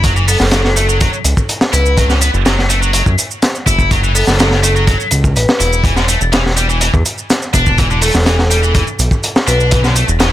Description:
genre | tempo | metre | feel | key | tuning
breakbeat, breaks | 124 BPM | 4/4 | straight | F# minor | A4 = 438 Hz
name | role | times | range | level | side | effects
heavy high-gain guitar | riff | 0.0-10.3 s | D3 to E4 | -17 LUFS | left 1 dB | distortion, vintage 12-bit sampler grit, tape echo
fat analog bass | bass | 0.0-10.3 s | E1 to F#2 | -14 LUFS | equal | none
crunchy breakbeat drum kit | drums | 0.0-10.3 s | hi-hat, kick drum, snare drum | -14 LUFS | equal | none
shaker | drums | 0.0-10.3 s | none | -20 LUFS | right 5 dB | none
vibraphone with hard mallets | melody | 0.3-9.7 s | A4 to B4 | -21 LUFS | equal | AM radio sound, tape echo
room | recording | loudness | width
small room reverb | none | -10 LUFS | side -13 dB against mid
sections
0.0-10.3 A section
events
none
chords
0.0 F#m7; 5.8 E7(no3)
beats
| 0.04 0.52 1.01 1.49 | 1.97 2.46 2.94 3.43 | 3.91 4.39 4.88 5.36 | 5.84 6.33 6.81 7.30 | 7.78 8.26 8.75 9.23 | 9.72 10.20

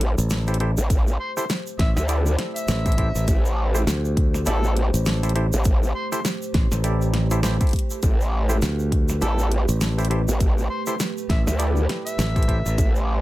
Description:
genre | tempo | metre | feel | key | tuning
glitch hop | 101 BPM | 4/4 | swing 58% on 16ths | A minor | A4 = 439 Hz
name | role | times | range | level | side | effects
dark analog pad | sustained chords | 0.0-13.2 s | A3 to C5 | -32 LUFS | right 2 dB | chorus, sidechain pumping
mellow clav | stabs | 0.0-12.6 s | E4 to D5 | -31 LUFS | right 1 dB | sidechain pumping, digital delay
growl bass | bass | 0.0-13.2 s | A1 to D2 | -21 LUFS | equal | chorus, overdrive
pop drum kit | drums | 0.0-12.9 s | hi-hat, snare drum | -27 LUFS | equal | none
modern bright fingered electric bass | bass | 0.2-12.8 s | A1 to D2 | -22 LUFS | equal | none
egg shaker | percussion | 0.2-13.1 s | none | -35 LUFS | right 2 dB | none
electronic kick drum | drums | 0.9-12.9 s | none | -20 LUFS | equal | none
overdriven harmonica | melody | 1.2-12.9 s | E4 to E5 | -32 LUFS | left 1 dB | digital delay
room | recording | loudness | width
little or no reverb | none | -19 LUFS | side -16 dB against mid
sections
0.0-13.2 A section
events
none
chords
0.0 Am7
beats
0.30 | 0.90 1.49 2.09 2.68 | 3.28 3.87 4.46 5.06 | 5.65 6.25 6.84 7.43 | 8.03 8.62 9.22 9.81 | 10.40 11.00 11.59 12.19 | 12.78

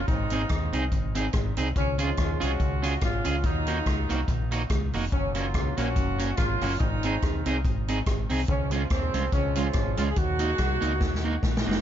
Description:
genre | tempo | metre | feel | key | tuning
ska | 143 BPM | 4/4 | swing 55% on 8ths | Db major | A4 = 441 Hz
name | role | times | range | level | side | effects
warm horn section | melody | 0.0-11.7 s | F3 to Ab4 | -31 LUFS | equal | dub echo
deep dub fingered electric bass | bass | 0.0-11.8 s | F1 to Eb2 | -29 LUFS | left 1 dB | none
swinging big-band drum kit | drums | 0.1-11.8 s | hi-hat, kick drum, rim click, snare drum | -28 LUFS | equal | none
electric guitar at the edge of break-up | accompaniment | 0.3-11.8 s | Ab3 to Ab4 | -31 LUFS | right 4 dB | harmonic tremolo, dub echo
room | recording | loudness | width
little or no reverb | nothing above 7.5 kHz | -24 LUFS | side -10 dB against mid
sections
0.0-11.8 A section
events
drum fill 11.0-11.8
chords
0.1 Ab; 1.8 Db; 3.4 Ebm; 5.1 Gb; 6.8 Ab; 8.5 Db; 10.2 Ebm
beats
| 0.08 0.50 0.92 1.34 | 1.76 2.18 2.60 3.02 | 3.44 3.86 4.28 4.70 | 5.12 5.54 5.96 6.38 | 6.80 7.22 7.64 8.06 | 8.48 8.91 9.33 9.75 | 10.17 10.59 11.01 11.43

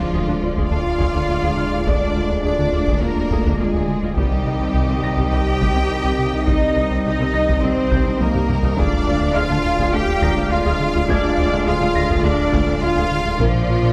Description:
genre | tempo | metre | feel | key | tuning
cinematic, hybrid orchestral and electronic film score | 104 BPM | 4/4 | straight | unclear | A4 = 438 Hz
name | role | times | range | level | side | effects
warm symphonic violin section | melody | 0.0-13.9 s | F4 to G5 | -33 LUFS | equal | none
warm symphonic violin section | second line | 0.0-13.9 s | F4 to G5 | -30 LUFS | equal | none
warm symphonic viola section | accompaniment | 0.0-13.9 s | C4 to F5 | -30 LUFS | equal | none
hollow soft pad | sustained chords | 0.0-13.9 s | G3 to Eb5 | -30 LUFS | equal | none
mellow French horn section | sustained chords | 0.0-13.9 s | C4 to F4 | -31 LUFS | equal | none
warm trombone section | sustained chords | 0.0-13.9 s | D3 to Bb3 | -30 LUFS | equal | none
round analog bass | riff | 0.0-13.9 s | C2 to D3 | -27 LUFS | equal | none
clear symphonic double bass section | bass | 0.0-13.9 s | Bb1 to D2 | -28 LUFS | equal | none
phased detuned saw bass | bass | 0.0-13.9 s | D1 to C2 | -28 LUFS | equal | phaser
rich symphonic cello section | bass | 0.0-13.9 s | F3 to G4 | -26 LUFS | equal | none
impact | sound effects | 0.0-1.9 s | none | -40 LUFS | equal | none
clear concert grand piano | texture | 0.0-13.9 s | F5 to Bb6 | -36 LUFS | equal | none
taiko ensemble | drums | 0.6-13.9 s | none | -27 LUFS | equal | none
room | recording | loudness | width
moderate scoring stage reverb, RT60 1.7 s | none | -19 LUFS | mono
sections
0.0-13.9 A section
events
impact 0.0-1.9; drum fill 8.2-8.8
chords
0.0 Ddim; 4.2 Cm; 8.8 Ddim; 13.4 Bb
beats
0.13 0.71 1.28 | 1.86 2.44 3.01 3.59 | 4.17 4.75 5.32 5.90 | 6.48 7.05 7.63 8.21 | 8.78 9.36 9.94 10.51 | 11.09 11.67 12.24 12.82 | 13.40

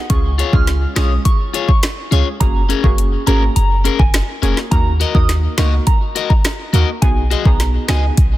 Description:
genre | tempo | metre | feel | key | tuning
dancehall | 104 BPM | 4/4 | straight | F# major | A4 = 439 Hz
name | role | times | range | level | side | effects
synth brass stab | accompaniment | 0.0-8.2 s | G#3 to A#4 | -24 LUFS | right 2 dB | chorus
soft synth bell | melody | 0.1-8.0 s | G#5 to E#6 | -25 LUFS | right 2 dB | chorus, phaser, tape echo
clean 808-style bass | bass | 0.1-8.4 s | E#1 to D#2 | -16 LUFS | equal | none
afro-pop drum kit | drums | 0.1-8.3 s | hi-hat, kick drum, snare drum | -15 LUFS | equal | none
electric guitar at the edge of break-up | arpeggios | 0.4-8.0 s | C#4 to D#5 | -22 LUFS | left 8 dB | tape echo
room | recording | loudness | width
digital ambience | dense, heavily limited modern master | -13 LUFS | side -15 dB against mid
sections
0.0-8.4 A section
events
none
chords
0.1 C#; 2.4 F#add9; 4.7 D#m; 7.0 B6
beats
| 0.10 0.68 1.25 1.83 | 2.41 2.98 3.56 4.14 | 4.72 5.29 5.87 6.45 | 7.02 7.60 8.18

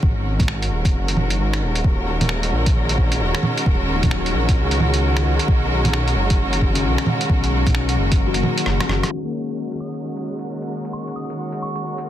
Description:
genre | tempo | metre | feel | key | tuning
future garage | 132 BPM | 4/4 | swing 62% on 16ths | unclear | A4 = 438 Hz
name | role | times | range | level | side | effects
felt-muted upright piano | accompaniment | 0.0-12.1 s | Db3 to Bb3 | -29 LUFS | left 7 dB | sidechain pumping, ping-pong delay
muted studio string section | sustained chords | 0.0-12.1 s | Eb3 to Bb4 | -24 LUFS | right 1 dB | sidechain pumping, low-pass filter
swelling detuned saw bass | bass | 0.0-9.0 s | Eb1 to Db2 | -21 LUFS | equal | sidechain pumping
electronic kick drum | drums | 0.0-8.2 s | none | -19 LUFS | equal | none
lo-fi sampler-style drum kit | drums | 0.4-12.1 s | bongos, finger snaps, hi-hat, rim click | -23 LUFS | right 2 dB | soft clipping on snare, low-pass filter on snare, low-pass filter on hats, low-pass filter on perc
drifting glass-harmonics texture | texture | 10.4-12.1 s | Gb5 | -36 LUFS | equal | chorus, built-in reverb
soft synth bell | melody | 9.8-11.8 s | Db6 to Eb6 | -34 LUFS | right 3 dB | chorus, vintage 12-bit sampler grit, digital delay
room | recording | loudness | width
digital ambience | dense, heavily limited modern master, low-pass filter | -18 LUFS | side -11 dB against mid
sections
0.0-9.1 A section; 9.1-12.1 B section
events
kick drops out 8.2-9.1; drum fill 8.7-9.1; band accent 9.0; filter sweep on string section 9.1-12.1; filter sweep 9.1-12.1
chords
0.0 Ab5; 1.8 Ebm7; 5.5 B; 9.1 Ab5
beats
| 0.03 0.48 0.94 1.39 | 1.84 2.30 2.75 3.21 | 3.66 4.12 4.57 5.03 | 5.48 5.93 6.39 6.84 | 7.30 7.75 8.21 8.66 | 9.12 9.57 10.03 10.48 | 10.94 11.39 11.84

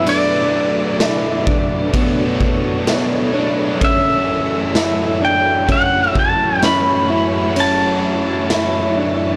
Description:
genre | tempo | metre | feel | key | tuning
dream pop | 64 BPM | 4/4 | straight | B minor | A4 = 441 Hz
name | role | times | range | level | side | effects
pedal steel guitar | melody | 0.0-9.4 s | D5 to B5 | -21 LUFS | equal | digital delay
overdriven electric guitar | accompaniment | 0.0-9.4 s | F#2 to C#5 | -27 LUFS | equal | tremolo, lush chorus
string machine, full ensemble | sustained chords | 0.0-9.4 s | F#2 to C#5 | -25 LUFS | equal | ensemble chorus
mellow electric guitar | arpeggios | 0.0-9.4 s | B3 to E4 | -23 LUFS | equal | subtle chorus, digital delay
raw garage drum kit | drums | 0.1-8.7 s | kick drum, ride cymbal, snare drum, tambourine | -23 LUFS | equal | none
glockenspiel with soft plastic mallets | texture | 6.6-9.1 s | B5 to C#6 | -32 LUFS | equal | none
room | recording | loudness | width
moderate shimmer reverb, RT60 3.9 s | blown-out, overdriven recording, overdrive | -16 LUFS | mono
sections
0.0-9.4 A section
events
none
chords
0.1 Bm9; 3.8 F#m7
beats
| 0.07 1.00 1.94 2.88 | 3.81 4.75 5.69 6.63 | 7.57 8.50

